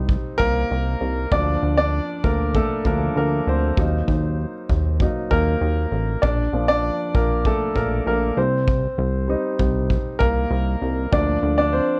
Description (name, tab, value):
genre	piano-driven pop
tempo	98 BPM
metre	4/4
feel	straight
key	Bb major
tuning	A4 = 440 Hz
part	clear concert grand piano	accompaniment	0.0-12.0 s	F3 to D5	-24 LUFS	equal	none
part	chorused synth bass	bass	0.0-11.8 s	A1 to Eb2	-24 LUFS	equal	none
part	kick drum	drums	0.1-11.3 s	none	-26 LUFS	equal	none
room	light reverb, studio reverb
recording	worn, warbling old tape, cassette tape, warbly pitch drift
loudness	-21 LUFS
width	mono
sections	0.0-12.0 A section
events	grand piano solo 0.0-12.0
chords	0.0 Cm; 1.3 Bb/D; 3.8 Ebm; 6.2 Bb; 8.4 Cm; 11.1 Bb/D